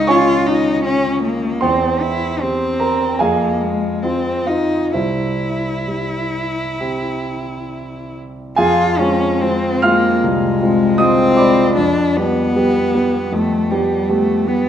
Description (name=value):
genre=classical, romantic duo for cello and grand piano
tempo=63-80 BPM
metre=4/4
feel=rubato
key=unclear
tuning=A4 = 440 Hz
part: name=warm cello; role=melody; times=0.0-14.7 s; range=G3 to F4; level=-18 LUFS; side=left 2 dB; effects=none
part: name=dark baby grand piano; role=accompaniment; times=0.0-14.7 s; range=C2 to F6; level=-17 LUFS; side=right 1 dB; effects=none
room=moderate recital hall reverb, RT60 1.4 s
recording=none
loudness=-14 LUFS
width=side -9 dB against mid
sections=0.0-8.6 A section; 8.6-14.7 B section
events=none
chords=0.0 Db; 1.6 C/E; 3.2 Fm; 4.9 C; 8.6 Fm; 11.8 G7/F